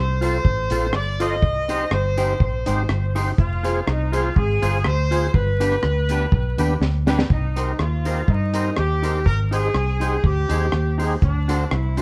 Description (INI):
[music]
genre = ska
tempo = 122 BPM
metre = 4/4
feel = swing 54% on 8ths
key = C minor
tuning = A4 = 436 Hz
[part]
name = clear horn section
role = melody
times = 0.0-12.0 s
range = D4 to Eb5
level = -28 LUFS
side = equal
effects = none
[part]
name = vintage muted fingered electric bass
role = bass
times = 0.0-12.0 s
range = F1 to G2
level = -24 LUFS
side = equal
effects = none
[part]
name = clean electric guitar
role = accompaniment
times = 0.2-12.0 s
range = D4 to C5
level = -31 LUFS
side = equal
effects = spring reverb
[part]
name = tonewheel organ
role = stabs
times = 0.2-12.0 s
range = B3 to C5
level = -31 LUFS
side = equal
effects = overdrive, chorus vibrato, slow rotary speaker
[part]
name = deep reggae drum kit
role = drums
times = 0.2-12.0 s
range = hi-hat, kick drum, rim click, snare drum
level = -24 LUFS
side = equal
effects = none
[part]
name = tambourine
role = percussion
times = 0.2-12.0 s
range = none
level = -46 LUFS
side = equal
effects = none
[sound]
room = moderate studio reverb, RT60 0.8 s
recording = band playing live in one room, vinyl crackle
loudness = -21 LUFS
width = mono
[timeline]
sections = 0.0-7.3 A section; 7.3-12.0 B section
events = drum fill 6.8-7.3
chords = 0.0 F; 1.4 Cm; 3.4 Fm; 5.3 G; 7.3 Cm7; 9.3 Abmaj7; 11.2 D7